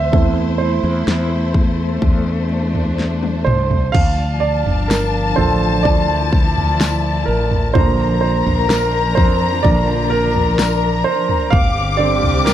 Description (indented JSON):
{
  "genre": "pop ballad",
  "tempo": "63 BPM",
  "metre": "4/4",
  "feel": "straight",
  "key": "D minor",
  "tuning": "A4 = 443 Hz",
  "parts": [
    { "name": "clear grand piano", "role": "accompaniment", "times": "0.0-12.5 s", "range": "D3 to F5", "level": "-19 LUFS", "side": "right 5 dB", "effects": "none" },
    { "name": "warm studio string section", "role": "sustained chords", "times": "0.0-12.5 s", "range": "D3 to A5", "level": "-23 LUFS", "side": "left 4 dB", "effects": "none" },
    { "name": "mellow fretless electric bass", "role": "bass", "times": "0.0-12.5 s", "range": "G1 to F2", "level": "-20 LUFS", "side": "left 1 dB", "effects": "none" },
    { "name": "pop drum kit", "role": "drums", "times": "0.1-12.5 s", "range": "crash cymbal, kick drum, snare drum, toms", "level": "-17 LUFS", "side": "equal", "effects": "none" },
    { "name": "warm symphonic violin section", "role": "second line", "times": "3.9-12.5 s", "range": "A5 to D6", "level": "-22 LUFS", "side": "left 6 dB", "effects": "none" },
    { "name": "tambourine", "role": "percussion", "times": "4.9-12.5 s", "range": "none", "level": "-32 LUFS", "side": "left 19 dB", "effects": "none" }
  ],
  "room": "little or no reverb",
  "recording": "dry, close 1970s-style studio recording",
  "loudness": "-14 LUFS",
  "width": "side -11 dB against mid",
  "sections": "0.0-3.9 A section; 3.9-12.5 B section",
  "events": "grand piano solo 0.0-3.9, 3.9-12.5; drum fill 3.0-3.9",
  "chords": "0.1 Am/E; 3.9 Dm; 7.8 Bb; 11.5 Gsus4"
}